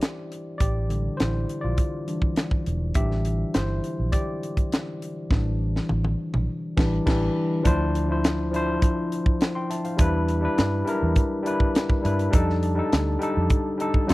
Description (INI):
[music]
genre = lush 1970s-style soul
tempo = 102 BPM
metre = 4/4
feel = straight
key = D minor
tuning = A4 = 439 Hz
[part]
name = tine electric piano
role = accompaniment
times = 0.0-14.1 s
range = D3 to C6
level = -26 LUFS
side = left 1 dB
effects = overdrive
[part]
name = tight funk drum kit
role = drums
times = 0.0-14.1 s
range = crash cymbal, hi-hat, kick drum, snare drum, toms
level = -23 LUFS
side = equal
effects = none
[part]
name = vintage muted fingered electric bass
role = bass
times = 0.6-14.1 s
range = E1 to G2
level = -25 LUFS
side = equal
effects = none
[sound]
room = small room ambience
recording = dry, close 1970s-style studio recording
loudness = -22 LUFS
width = side -19 dB against mid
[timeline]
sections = 0.0-7.7 A section; 7.7-14.1 B section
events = tine electric piano solo 0.0-7.7; drum fill 5.3-7.7; band accent 6.5-7.7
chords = 0.0 A7sus4; 7.7 Dm9; 10.0 Em7; 12.3 F13